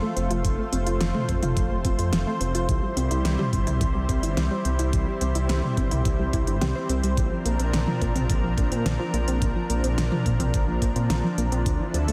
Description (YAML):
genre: synthwave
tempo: 107 BPM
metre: 4/4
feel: straight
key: unclear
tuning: A4 = 440 Hz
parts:
  - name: lush unison pad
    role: sustained chords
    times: 0.0-12.1 s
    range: F3 to C5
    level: -32 LUFS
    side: equal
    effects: chorus, sidechain pumping, shimmer reverb
  - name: soft round pluck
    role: arpeggios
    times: 0.0-12.1 s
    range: D3 to C5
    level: -32 LUFS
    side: equal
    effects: chorus, tape echo, shimmer reverb
  - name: detuned saw bass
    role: bass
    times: 0.2-12.1 s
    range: F1 to Bb2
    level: -28 LUFS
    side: equal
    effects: chorus, tube saturation
  - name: pop drum kit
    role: drums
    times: 0.2-12.1 s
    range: hi-hat, snare drum, toms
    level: -32 LUFS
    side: equal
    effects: studio reverb
  - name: electronic kick drum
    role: drums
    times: 0.4-11.8 s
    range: none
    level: -29 LUFS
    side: equal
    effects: studio reverb
room: moderate lush hall reverb, RT60 1.8 s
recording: dense, heavily limited modern master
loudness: -24 LUFS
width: mono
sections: 0.0-12.1 A section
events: none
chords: 0.0 F; 2.7 C; 7.2 Bbadd9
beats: | 0.45 1.01 1.57 2.13 | 2.69 3.25 3.81 4.37 | 4.93 5.49 6.05 6.61 | 7.17 7.74 8.30 8.86 | 9.42 9.98 10.54 11.10 | 11.66